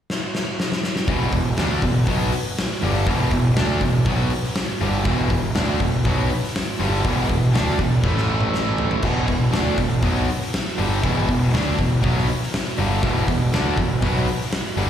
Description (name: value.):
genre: hard rock.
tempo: 120 BPM.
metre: 4/4.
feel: straight.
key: E minor.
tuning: A4 = 439 Hz.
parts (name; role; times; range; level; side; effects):
big rock drum kit; drums; 0.1-14.9 s; crash cymbal, hi-hat, kick drum, snare drum, toms; -23 LUFS; equal; none.
distorted electric guitar; riff; 1.1-14.9 s; E2 to D4; -24 LUFS; right 6 dB; distortion, slapback echo.
tight distorted guitar; riff; 1.1-14.9 s; E2 to D4; -26 LUFS; left 9 dB; distortion, slapback echo.
fuzz picked electric bass; bass; 1.1-14.9 s; E1 to D2; -22 LUFS; equal; overdrive.
room: little or no reverb.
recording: live gig heard through the venue's PA, recital hall reverb.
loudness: -18 LUFS.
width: side -9 dB against mid.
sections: 0.0-1.1 A section; 1.1-14.9 B section.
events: drum fill 0.1-1.1, 8.0-9.0.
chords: 0.0 N.C.; 1.1 Em; 8.0 A5; 9.0 Em.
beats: 0.09 0.58 | 1.08 1.57 2.07 2.57 | 3.06 3.56 4.06 4.56 | 5.05 5.55 6.05 6.55 | 7.05 7.54 8.04 8.54 | 9.04 9.54 10.04 10.54 | 11.04 11.53 12.03 12.53 | 13.03 13.53 14.03 14.53.